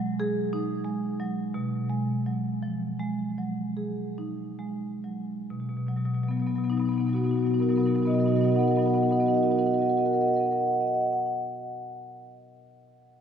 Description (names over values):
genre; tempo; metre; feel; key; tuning
classical, contemporary piece for solo marimba; 65-93 BPM; 5/4; rubato; B major; A4 = 441 Hz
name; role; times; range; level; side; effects
marimba with medium hard mallets; solo; 0.0-11.4 s; B2 to F#5; -25 LUFS; equal; none
room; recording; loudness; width
wet church reverb, RT60 3.8 s; minimal, uncompressed stereo recording; -24 LUFS; side -8 dB against mid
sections
0.0-5.5 A section; 5.5-9.9 B section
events
slowing down 0.0-5.5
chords
0.0 B6; 5.5 Bmaj7